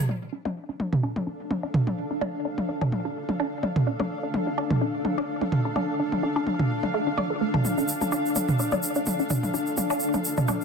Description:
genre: minimal techno.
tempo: 127 BPM.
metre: 4/4.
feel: swing 54% on 16ths.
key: D minor.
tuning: A4 = 438 Hz.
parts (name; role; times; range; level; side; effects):
resonant blip pluck; riff; 0.1-10.5 s; A3 to D5; -30 LUFS; equal; phaser, ping-pong delay.
electronic toms; percussion; 0.1-10.6 s; none; -26 LUFS; right 1 dB; none.
granular cloud pad; texture; 0.8-10.6 s; D4 to F5; -29 LUFS; left 1 dB; built-in reverb.
egg shaker; percussion; 7.7-10.6 s; none; -32 LUFS; right 2 dB; none.
room: wet studio ambience, RT60 0.5 s.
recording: dense, heavily limited modern master.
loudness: -24 LUFS.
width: side -5 dB against mid.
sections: 0.1-10.6 A section.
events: filter sweep on synth arpeggio sound 0.1-10.6.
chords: 0.1 Dm.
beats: | 0.09 0.56 1.03 1.51 | 1.98 2.45 2.92 3.40 | 3.87 4.34 4.81 5.29 | 5.76 6.23 6.70 7.18 | 7.65 8.12 8.59 9.06 | 9.54 10.01 10.48.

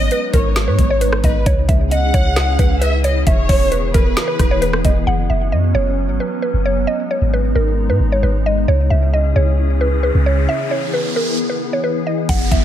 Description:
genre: hip hop, trap.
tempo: 133 BPM.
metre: 4/4.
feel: half-time.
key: unclear.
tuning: A4 = 436 Hz.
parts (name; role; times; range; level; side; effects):
mallet-like synth pluck; melody; 0.0-12.6 s; A#4 to F#5; -21 LUFS; right 1 dB; chorus, low-pass filter, ping-pong delay.
warm studio violin section; second line; 0.0-5.0 s; B4 to F#5; -23 LUFS; equal; ping-pong delay.
glassy FM pad; sustained chords; 0.0-12.6 s; C#3 to G#4; -22 LUFS; left 1 dB; ensemble chorus, built-in reverb.
clean 808-style bass; bass; 0.0-12.6 s; E1 to G#2; -17 LUFS; equal; none.
trap drum kit; drums; 0.1-5.0, 12.3-12.6 s; crash cymbal, hi-hat, kick drum, rim click, snare drum; -16 LUFS; equal; none.
riser and downlifter; sound effects; 9.7-12.6 s; none; -28 LUFS; right 2 dB; none.
room: digital ambience.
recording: none.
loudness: -14 LUFS.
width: side -11 dB against mid.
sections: 0.0-5.1 A section; 5.1-12.3 B section.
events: riser 9.7-12.3; break 10.5-12.3.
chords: 0.0 G#m; 1.5 C#m; 3.3 E; 5.1 F#sus4; 6.9 G#m; 8.7 C#m; 10.5 E.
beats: 0.11 0.56 1.01 | 1.46 1.91 2.37 2.82 | 3.27 3.72 4.17 4.62 | 5.07 5.52 5.97 6.42 | 6.88 7.33 7.78 8.23 | 8.68 9.13 9.58 10.03 | 10.48 10.94 11.39 11.84 | 12.29.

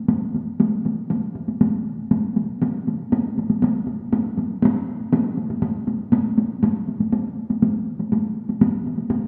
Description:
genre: japanese traditional.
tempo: 120 BPM.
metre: 4/4.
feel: straight.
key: none.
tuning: none.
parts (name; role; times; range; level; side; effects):
taiko ensemble; percussion; 0.1-9.2 s; none; -22 LUFS; equal; none.
room: wet scoring stage reverb, RT60 1.8 s.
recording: none.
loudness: -22 LUFS.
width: mono.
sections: 0.0-6.6 A section; 6.6-9.3 B section.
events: none.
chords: none.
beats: 0.09 | 0.60 1.11 1.61 2.12 | 2.62 3.12 3.63 4.13 | 4.63 5.13 5.63 6.13 | 6.63 7.13 7.62 8.12 | 8.62 9.11.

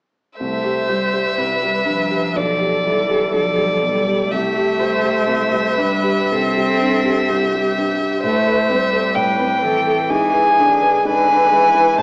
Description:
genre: classical, slow romantic movement for piano quartet.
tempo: 62 BPM.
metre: 4/4.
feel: uneven beats, rubato.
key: C major.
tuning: A4 = 438 Hz.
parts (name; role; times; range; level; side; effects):
rich violin; melody; 0.4-12.0 s; D5 to G#5; -17 LUFS; equal; none.
rich cello; second line; 0.4-12.0 s; D3 to C4; -23 LUFS; equal; none.
warm baby grand piano; accompaniment; 0.4-12.0 s; B1 to B4; -22 LUFS; equal; none.
warm viola; accompaniment; 0.4-12.0 s; G4 to C5; -21 LUFS; equal; none.
room: wet recital hall reverb, RT60 1.3 s.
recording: small speaker sound.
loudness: -14 LUFS.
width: side -31 dB against mid.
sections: 0.4-12.0 A section.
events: none.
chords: 0.4 C; 2.4 G/B; 4.3 C; 8.2 Am7; 10.1 G#dim.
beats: | 0.40 1.38 2.36 3.34 | 4.32 5.28 6.31 7.29 | 8.24 9.17 10.12 11.06 | 11.99.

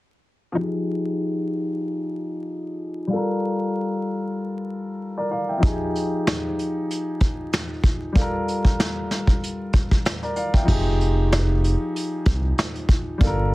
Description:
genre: hip hop, boom-bap hip-hop.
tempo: 95 BPM.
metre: 4/4.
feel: swing 55% on 16ths.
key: unclear.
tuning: A4 = 442 Hz.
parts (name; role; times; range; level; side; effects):
dark baby grand piano; accompaniment; 0.5-13.5 s; F3 to G5; -25 LUFS; left 1 dB; cassette tape, high-pass filter, low-pass filter.
vintage brush drum kit; drums; 5.6-13.4 s; crash cymbal, hi-hat, kick drum, snare drum; -21 LUFS; equal; vintage 12-bit sampler grit.
smooth synth bass; bass; 10.7-13.5 s; F1 to C2; -20 LUFS; equal; none.
room: light reverb.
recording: dense, heavily limited modern master, vinyl crackle.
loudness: -21 LUFS.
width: side -19 dB against mid.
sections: 0.6-10.7 A section; 10.7-13.5 B section.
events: filter sweep on grand piano 0.6-10.7.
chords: 0.6 Fm9; 3.1 Gm9; 5.6 Fm9; 8.2 Gm9; 10.7 Fm9.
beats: | 0.58 1.21 1.84 2.47 | 3.10 3.73 4.37 5.00 | 5.63 6.26 6.89 7.52 | 8.15 8.79 9.42 10.05 | 10.68 11.31 11.94 12.58 | 13.21.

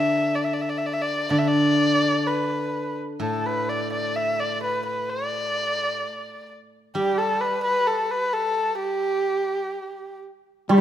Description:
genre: chinese traditional, Chinese chamber ensemble.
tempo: 64 BPM.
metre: 2/4.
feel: rubato.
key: G gong mode.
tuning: A4 = 440 Hz.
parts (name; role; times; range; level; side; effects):
dark erhu; melody; 0.0-10.8 s; G4 to E5; -24 LUFS; equal; none.
steel-string zither; accompaniment; 0.0-10.8 s; A2 to G3; -26 LUFS; equal; none.
hammered dulcimer; second line; 10.7-10.8 s; G3; -16 LUFS; right 6 dB; none.
trumpet with bucket mute; second line; 10.7-10.8 s; G3; -16 LUFS; left 3 dB; none.
woodblock; percussion; 10.7-10.8 s; none; -29 LUFS; left 3 dB; none.
room: light reverb.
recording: none.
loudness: -22 LUFS.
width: side -10 dB against mid.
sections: 0.0-10.7 A section.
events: none.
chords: none.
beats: 0.38 | 1.32 2.26 | 3.21 4.16 | 5.10 6.03 | 6.96 7.89 | 8.82 9.76 | 10.71.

